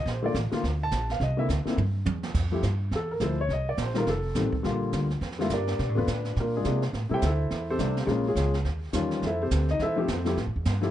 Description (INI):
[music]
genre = jazz piano trio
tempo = 210 BPM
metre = 4/4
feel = swing 60% on 8ths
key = F major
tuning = A4 = 440 Hz
[part]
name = warm grand piano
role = melody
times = 0.0-10.9 s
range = C3 to A5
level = -28 LUFS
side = left 2 dB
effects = plate reverb
[part]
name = upright bass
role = bass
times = 0.0-10.9 s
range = F1 to C3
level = -28 LUFS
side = right 1 dB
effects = none
[part]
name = jazz brush drum kit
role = drums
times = 0.1-10.9 s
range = brushed snare drum, crash cymbal, hi-hat, kick drum, snare drum, toms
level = -35 LUFS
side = right 3 dB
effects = none
[sound]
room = light reverb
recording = dark, warm production, nothing above 10.6 kHz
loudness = -25 LUFS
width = side -12 dB against mid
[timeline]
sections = 0.0-2.4 A section; 2.4-10.9 B section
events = drum fill 1.8-2.4; grand piano solo 2.4-10.9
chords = 0.1 Bbmaj7; 1.2 Cadd9; 2.4 Fmaj9; 3.5 Cm7; 4.1 F9; 4.6 Bb6; 5.8 Bm7b5; 6.4 Bb9; 6.9 Am7; 8.1 Bbm7; 8.7 Eb9; 9.2 Fmaj9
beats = | 0.06 0.35 0.63 0.92 | 1.21 1.49 1.78 2.06 | 2.35 2.64 2.92 3.21 | 3.50 3.78 4.07 4.36 | 4.64 4.93 5.22 5.50 | 5.79 6.08 6.36 6.65 | 6.93 7.22 7.51 7.79 | 8.08 8.37 8.65 8.94 | 9.23 9.51 9.80 10.08 | 10.37 10.66